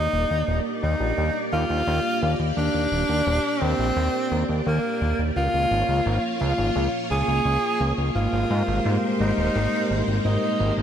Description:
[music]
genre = synthwave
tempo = 86 BPM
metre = 4/4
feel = straight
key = Eb major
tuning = A4 = 438 Hz
[part]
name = breathy tenor saxophone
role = melody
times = 0.0-10.8 s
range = Bb3 to Ab4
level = -25 LUFS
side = equal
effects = ping-pong delay
[part]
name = string machine, full ensemble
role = sustained chords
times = 0.0-10.8 s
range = Ab3 to D5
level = -26 LUFS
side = equal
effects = ensemble chorus
[part]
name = fat analog bass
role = bass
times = 0.0-10.8 s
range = Eb1 to Ab2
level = -24 LUFS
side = equal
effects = none
[sound]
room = moderate plate reverb, RT60 2.7 s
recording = bright 1980s-style digital production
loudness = -21 LUFS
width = side -9 dB against mid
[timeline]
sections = 0.0-10.8 A section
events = none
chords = 0.0 Ebmaj7; 5.4 Db; 8.2 Abmaj7

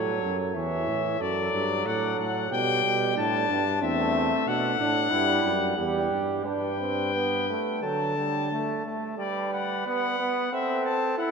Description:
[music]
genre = classical, imitative canzona for brass ensemble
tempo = 91 BPM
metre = 4/4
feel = straight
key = G major from 3.8 s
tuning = A4 = 440 Hz
[part]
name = clear trumpet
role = melody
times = 0.0-11.3 s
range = C#5 to A5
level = -28 LUFS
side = left 7 dB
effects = none
[part]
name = mellow flugelhorn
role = second line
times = 0.0-11.3 s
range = C4 to C#5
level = -30 LUFS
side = right 5 dB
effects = none
[part]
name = bright trombone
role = accompaniment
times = 0.0-11.3 s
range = E3 to E4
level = -30 LUFS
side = right 2 dB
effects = none
[part]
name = warm bass trombone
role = bass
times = 0.0-8.8 s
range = E2 to D3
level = -32 LUFS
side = right 1 dB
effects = none
[sound]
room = wet church reverb, RT60 3.6 s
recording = none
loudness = -24 LUFS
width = side -5 dB against mid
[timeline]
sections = 0.0-9.2 A section; 9.2-11.3 B section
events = none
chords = 0.0 A; 1.2 D/F#; 2.5 G/B; 3.8 C/E; 6.5 Dsus4/G; 7.8 D; 9.2 G; 10.5 Am/C

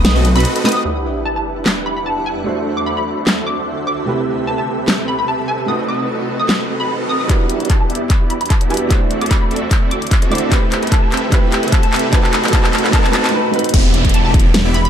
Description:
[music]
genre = future bass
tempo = 149 BPM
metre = 4/4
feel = swing 53% on 16ths, half-time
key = E minor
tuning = A4 = 440 Hz
[part]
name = hollow square pluck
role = melody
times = 0.0-14.9 s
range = A5 to D#6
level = -23 LUFS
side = left 1 dB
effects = ensemble chorus, cassette tape, sidechain pumping, ping-pong delay
[part]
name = felt-muted upright piano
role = accompaniment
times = 0.0-13.8 s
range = C3 to F#5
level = -22 LUFS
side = right 2 dB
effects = sidechain pumping, ping-pong delay
[part]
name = wide detuned saw bass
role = bass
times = 0.0-0.4, 13.7-14.9 s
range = E1 to B1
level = -15 LUFS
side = equal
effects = chorus, sidechain pumping
[part]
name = dubstep drum kit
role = drums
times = 0.0-14.9 s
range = crash cymbal, handclaps, hi-hat, snare drum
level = -19 LUFS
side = left 1 dB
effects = high-pass filter on hats, high-pass filter on cymbals, high-pass filter on snare, high-pass filter on room
[part]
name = supersaw chords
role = riff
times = 0.2-14.8 s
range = B3 to E5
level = -22 LUFS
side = right 1 dB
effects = sidechain pumping, low-pass filter
[part]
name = shimmering ambient pad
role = sustained chords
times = 1.5-13.3 s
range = D2 to F#5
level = -29 LUFS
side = right 1 dB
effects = chorus, built-in reverb, sidechain pumping
[part]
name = sub drop, riser and downlifter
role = sound effects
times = 0.9-14.9 s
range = none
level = -26 LUFS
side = right 1 dB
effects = none
[part]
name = electronic kick drum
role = drums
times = 7.3-14.4 s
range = none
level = -14 LUFS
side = equal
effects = none
[sound]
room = light reverb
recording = dark, warm production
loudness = -13 LUFS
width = side -9 dB against mid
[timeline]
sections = 0.9-7.3 A section; 7.3-13.7 B section; 13.7-14.9 C section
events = break 0.4-0.9, 13.3-13.7; impact 0.9-2.5; riser 6.0-7.3; build-up 7.3-13.7; drum fill 7.3-13.3, 13.5; filter sweep on supersaw synth 7.3-13.7; filter sweep on synth pluck 7.3-13.7; drop 13.7-14.9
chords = 0.0 B7b9; 0.9 Em7; 2.5 D9; 4.1 Am9/C; 5.7 B7b9; 7.3 Em7; 8.9 D9; 10.5 Am9/C; 12.1 B7b9; 13.7 Em7

